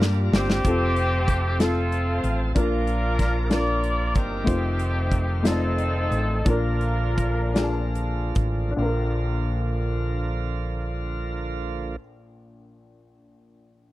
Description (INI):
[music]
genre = slow gospel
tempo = 46-63 BPM (dotted quarters)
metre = 6/8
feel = straight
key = Bb major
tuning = A4 = 436 Hz
[part]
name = warm upright piano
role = accompaniment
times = 0.0-13.9 s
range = Bb1 to A5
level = -28 LUFS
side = left 2 dB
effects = none
[part]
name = bright tonewheel organ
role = sustained chords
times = 0.0-12.0 s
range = D3 to D5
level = -33 LUFS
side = right 3 dB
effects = slow rotary speaker, overdrive
[part]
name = fingered electric bass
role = bass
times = 0.0-11.9 s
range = F1 to G2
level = -25 LUFS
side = equal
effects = none
[part]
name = modern studio drum kit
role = drums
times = 0.0-8.6 s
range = hi-hat, kick drum, snare drum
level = -23 LUFS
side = equal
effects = none
[part]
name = warm horn section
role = melody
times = 0.3-7.9 s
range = C4 to D5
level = -27 LUFS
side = equal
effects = none
[sound]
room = small room ambience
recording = dry, close 1970s-style studio recording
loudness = -21 LUFS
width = side -16 dB against mid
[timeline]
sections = 0.6-8.8 A section; 8.8-13.9 B section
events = drum fill 0.0-0.6; slowing down 4.5-8.8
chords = 0.0 Bb; 0.6 F; 2.6 Bb; 4.5 F7; 6.5 Bb